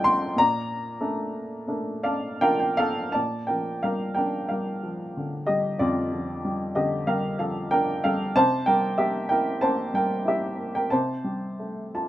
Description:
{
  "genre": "classical, lyrical solo piano",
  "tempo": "79-96 BPM",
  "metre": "4/4",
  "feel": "rubato",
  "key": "Bb major",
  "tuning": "A4 = 437 Hz",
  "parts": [
    { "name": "warm upright piano", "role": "solo", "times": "0.0-12.1 s", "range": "F2 to C6", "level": "-23 LUFS", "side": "equal", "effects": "none" }
  ],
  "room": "light reverb",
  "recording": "minimal, uncompressed stereo recording",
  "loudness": "-23 LUFS",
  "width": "side -14 dB against mid",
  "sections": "0.0-3.1 A section; 3.1-12.1 B section",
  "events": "upright piano fill 1.7-3.1, 11.6-12.1",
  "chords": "0.4 Bbmaj7; 3.1 Bb6; 8.4 C7; 10.9 Fadd9/C (rootless)",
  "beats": "| 0.36 1.01 1.69 2.42 | 3.14 3.83 4.51 5.16 | 5.81 6.44 7.08 7.72 | 8.36 8.99 9.63 10.27 | 10.92 11.60"
}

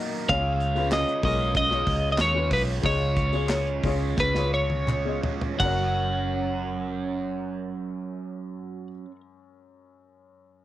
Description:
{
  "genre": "piano-driven pop",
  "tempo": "82-96 BPM",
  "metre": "4/4",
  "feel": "straight",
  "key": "F# major",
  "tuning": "A4 = 440 Hz",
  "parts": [
    { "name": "felt-muted upright piano", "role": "accompaniment", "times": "0.0-10.6 s", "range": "F#2 to A#5", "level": "-33 LUFS", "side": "left 7 dB", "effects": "cassette tape" },
    { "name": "crunchy overdriven guitar", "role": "riff", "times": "0.0-9.2 s", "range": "C#3 to C#5", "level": "-32 LUFS", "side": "right 8 dB", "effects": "phaser, cassette tape" },
    { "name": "twelve-string electric guitar", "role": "melody", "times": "0.3-8.9 s", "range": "B4 to F#5", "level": "-26 LUFS", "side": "equal", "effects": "none" },
    { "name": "vintage muted fingered electric bass", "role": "bass", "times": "0.3-8.9 s", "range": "F#1 to D#2", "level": "-28 LUFS", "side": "equal", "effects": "none" },
    { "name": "modern studio drum kit", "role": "drums", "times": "0.3-5.8 s", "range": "crash cymbal, handclaps, hi-hat, kick drum, snare drum, toms", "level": "-30 LUFS", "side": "equal", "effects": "cassette tape" },
    { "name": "group handclap", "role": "percussion", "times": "0.9-5.9 s", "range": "none", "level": "-42 LUFS", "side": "left 8 dB", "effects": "none" }
  ],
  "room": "light reverb, studio reverb",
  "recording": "home recording on cassette",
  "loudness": "-23 LUFS",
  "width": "side -14 dB against mid",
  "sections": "0.0-5.6 A section; 5.6-8.5 B section",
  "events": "slowing down 0.3-5.6; drum fill 4.2-5.6",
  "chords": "0.3 C#; 5.6 F#",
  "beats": "| 0.29 0.92 1.55 2.19 | 2.84 3.50 4.18 4.88 | 5.60 6.34 7.07 7.81"
}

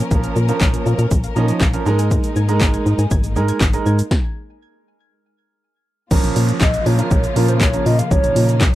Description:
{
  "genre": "dance-pop",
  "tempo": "120 BPM",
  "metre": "4/4",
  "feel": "straight",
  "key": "Bb minor",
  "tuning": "A4 = 440 Hz",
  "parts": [
    { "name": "warm studio string section", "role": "sustained chords", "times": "0.0-8.8 s", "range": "Db3 to Bb4", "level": "-27 LUFS", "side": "left 2 dB", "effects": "sidechain pumping, plate reverb" },
    { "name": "organ-like FM bass", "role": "bass", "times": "0.0-8.8 s", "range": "Ab1 to Bb2", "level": "-17 LUFS", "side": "left 1 dB", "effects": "sidechain pumping" },
    { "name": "clear concert grand piano", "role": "accompaniment", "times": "0.1-8.6 s", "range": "F3 to Bb4", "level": "-23 LUFS", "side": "right 6 dB", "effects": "sidechain pumping, plate reverb" },
    { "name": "soft round pluck", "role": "arpeggios", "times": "0.1-4.0 s", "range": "F3 to Ab6", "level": "-32 LUFS", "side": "left 4 dB", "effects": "chorus, sidechain pumping, ping-pong delay" },
    { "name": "punchy analog drum machine", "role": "drums", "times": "0.1-8.7 s", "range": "crash cymbal, handclaps, hi-hat, kick drum, shaker, snare drum", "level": "-18 LUFS", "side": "equal", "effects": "none" },
    { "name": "downlifter", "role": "sound effects", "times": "6.1-8.8 s", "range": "none", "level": "-31 LUFS", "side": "equal", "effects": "none" },
    { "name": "hollow clarinet-like synth lead", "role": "melody", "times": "6.6-8.6 s", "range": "Bb4 to F5", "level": "-21 LUFS", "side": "equal", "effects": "chorus, phaser, plate reverb" }
  ],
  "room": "little or no reverb",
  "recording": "rough home demo mix",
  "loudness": "-14 LUFS",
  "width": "side -15 dB against mid",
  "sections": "0.0-6.1 A section; 6.1-8.8 B section",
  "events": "stop 4.1-6.1",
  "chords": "0.0 Bbm; 1.9 Absus2; 6.1 Bbm",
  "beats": "| 0.11 0.61 1.11 1.61 | 2.11 2.61 3.11 3.61 | 4.11 4.61 5.11 5.61 | 6.11 6.61 7.11 7.61 | 8.11 8.61"
}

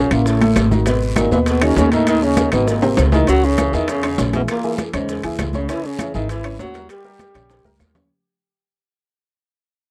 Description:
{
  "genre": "Afro-Cuban jazz",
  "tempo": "199 BPM",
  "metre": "4/4",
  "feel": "straight",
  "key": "unclear",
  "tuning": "A4 = 445 Hz",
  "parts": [
    { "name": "mellow trombone", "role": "melody", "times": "0.0-7.8 s", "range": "G#3 to G4", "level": "-24 LUFS", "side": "equal", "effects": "tape echo" },
    { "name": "breathy tenor saxophone", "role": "second line", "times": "0.0-7.8 s", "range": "G#2 to G3", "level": "-28 LUFS", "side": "equal", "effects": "none" },
    { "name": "warm upright piano", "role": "accompaniment", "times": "0.0-8.1 s", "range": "A2 to C#5", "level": "-24 LUFS", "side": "equal", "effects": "none" },
    { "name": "upright bass", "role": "bass", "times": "0.0-8.1 s", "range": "G#1 to E2", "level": "-22 LUFS", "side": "equal", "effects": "none" },
    { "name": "bongos", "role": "percussion", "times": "0.1-8.1 s", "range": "none", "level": "-33 LUFS", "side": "equal", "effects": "none" },
    { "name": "claves", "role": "percussion", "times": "0.1-8.0 s", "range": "none", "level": "-35 LUFS", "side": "equal", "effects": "none" },
    { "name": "congas", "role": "percussion", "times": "0.1-8.0 s", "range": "none", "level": "-27 LUFS", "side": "equal", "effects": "none" },
    { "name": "guiro", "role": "percussion", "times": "0.1-8.1 s", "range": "none", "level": "-40 LUFS", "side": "equal", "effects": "none" },
    { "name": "maracas", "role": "percussion", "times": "0.1-8.1 s", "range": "none", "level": "-40 LUFS", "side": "equal", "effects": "none" },
    { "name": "timbales", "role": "percussion", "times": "0.1-8.0 s", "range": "none", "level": "-27 LUFS", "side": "equal", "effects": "none" }
  ],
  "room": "little or no reverb",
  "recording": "dry, close 1970s-style studio recording",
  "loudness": "-17 LUFS",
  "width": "mono",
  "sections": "0.0-3.3 A section; 3.3-8.1 B section",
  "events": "drum fill 2.8-3.3, 7.5-8.1; fade-out 3.3-8.1",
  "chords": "0.3 A; 0.9 G#m7; 2.1 D#m7b5; 2.7 G#7; 3.3 C#m; 4.5 A#m7b5; 5.7 C#m; 6.9 D#7",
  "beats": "0.26 0.56 | 0.86 1.17 1.47 1.77 | 2.07 2.37 2.67 2.98 | 3.28 3.58 3.88 4.18 | 4.48 4.79 5.09 5.39 | 5.69 5.99 6.29 6.59 | 6.90 7.20 7.50 7.80"
}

